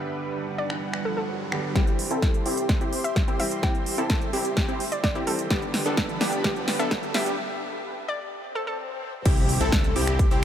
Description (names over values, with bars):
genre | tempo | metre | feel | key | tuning
EDM, festival progressive house | 128 BPM | 4/4 | straight | unclear | A4 = 442 Hz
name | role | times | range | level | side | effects
clear baby grand piano | accompaniment | 0.0-9.3 s | D3 to G4 | -35 LUFS | right 2 dB | sidechain pumping, tape echo
lush unison pad | sustained chords | 0.0-10.4 s | G3 to C6 | -36 LUFS | right 1 dB | chorus, phaser, sidechain pumping
riser, swell and impact | sound effects | 0.2-10.4 s | none | -36 LUFS | equal | none
hollow square pluck | melody | 0.6-8.7 s | A4 to G5 | -34 LUFS | left 1 dB | chorus, tape echo
big-room dance drum kit | drums | 0.7-10.4 s | crash cymbal, finger snaps, hi-hat, snare drum | -29 LUFS | equal | overdrive, low-pass filter on snare, low-pass filter on hats, low-pass filter on cymbals, low-pass filter on room
wide unison lead | arpeggios | 1.8-10.4 s | G4 to A4 | -32 LUFS | left 1 dB | lush chorus, sidechain pumping, tape echo
supersaw stab | riff | 1.8-10.4 s | B3 to A4 | -31 LUFS | equal | cassette tape, sidechain pumping, low-pass filter, tape echo
fat analog bass | bass | 1.8-10.4 s | G1 to C2 | -32 LUFS | equal | none
electronic kick drum | drums | 1.8-10.3 s | none | -24 LUFS | equal | none
room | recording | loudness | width
light reverb, digital ambience | high-pass filter | -23 LUFS | side -10 dB against mid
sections
0.0-1.8 A section; 1.8-9.3 B section; 9.3-10.4 C section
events
riser 0.2-1.8; build-up 1.8-9.3; drum fill 1.8-7.4; filter sweep on supersaw synth 1.8-9.3; filter sweep on analog synth lead 1.8-9.3; break 7.4-9.3; swell 8.5-9.3; drop 9.3-10.4; impact 9.3-10.4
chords
0.0 G; 1.8 C; 5.5 G; 9.3 C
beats
0.35 0.82 1.29 | 1.76 2.23 2.69 3.16 | 3.63 4.10 4.57 5.04 | 5.51 5.97 6.44 6.91 | 7.38 7.85 8.32 8.79 | 9.26 9.72 10.19